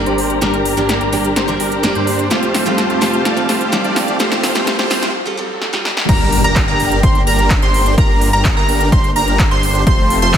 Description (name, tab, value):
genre	EDM, festival progressive house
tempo	127 BPM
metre	4/4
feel	straight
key	G minor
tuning	A4 = 441 Hz
part	picked steel-string acoustic guitar	accompaniment	0.0-5.9 s	G3 to D5	-22 LUFS	right 2 dB	sidechain pumping, dub echo
part	dark symphonic string section	sustained chords	0.0-10.4 s	F3 to Bb5	-23 LUFS	left 2 dB	sidechain pumping, low-pass filter
part	dense compressed supersaw	riff	0.0-10.4 s	A3 to D5	-19 LUFS	right 1 dB	sidechain pumping, low-pass filter, dub echo
part	wide detuned saw bass	bass	0.0-10.4 s	F1 to G2	-22 LUFS	equal	chorus, sidechain pumping
part	riser and impact	sound effects	2.4-8.0 s	none	-27 LUFS	left 1 dB	none
part	big-room dance drum kit	drums	0.1-10.4 s	crash cymbal, handclaps, hi-hat, snare drum	-20 LUFS	equal	overdrive
part	plucky unison lead	arpeggios	6.1-10.4 s	Bb5 to C6	-17 LUFS	right 1 dB	sidechain pumping, dub echo
part	electronic kick drum	drums	6.1-10.4 s	none	-15 LUFS	equal	overdrive
room	moderate lush hall reverb, RT60 1.7 s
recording	high-pass filter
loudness	-12 LUFS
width	side -9 dB against mid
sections	0.0-6.1 A section; 6.1-10.4 B section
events	build-up 0.0-6.1; drum fill 0.0-5.1, 5.6-6.1; filter sweep on supersaw synth 0.0-6.1; filter sweep 0.0-6.1; break 5.1-6.1; drop 6.1-10.4; impact 6.1-8.0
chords	0.0 Gm; 2.3 Fadd9; 6.1 Gm; 9.9 Fadd9